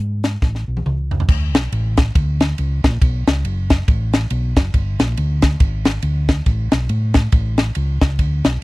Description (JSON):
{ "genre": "uptempo gospel", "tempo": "139 BPM", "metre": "4/4", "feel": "swing 59% on 8ths", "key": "D major", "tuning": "A4 = 437 Hz", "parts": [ { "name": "hollow-body short-scale fingered electric bass", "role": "bass", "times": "0.0-8.6 s", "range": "F#1 to A2", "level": "-19 LUFS", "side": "equal", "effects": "none" }, { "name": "crisp fusion drum kit", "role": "drums", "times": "0.2-8.5 s", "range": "crash cymbal, hi-hat, kick drum, ride cymbal, snare drum, toms", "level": "-16 LUFS", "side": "equal", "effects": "none" } ], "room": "little or no reverb", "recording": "dry, close 1970s-style studio recording", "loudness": "-15 LUFS", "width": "side -21 dB against mid", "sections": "0.0-1.3 A section; 1.3-8.6 B section", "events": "drum fill 0.4-1.3", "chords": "none" }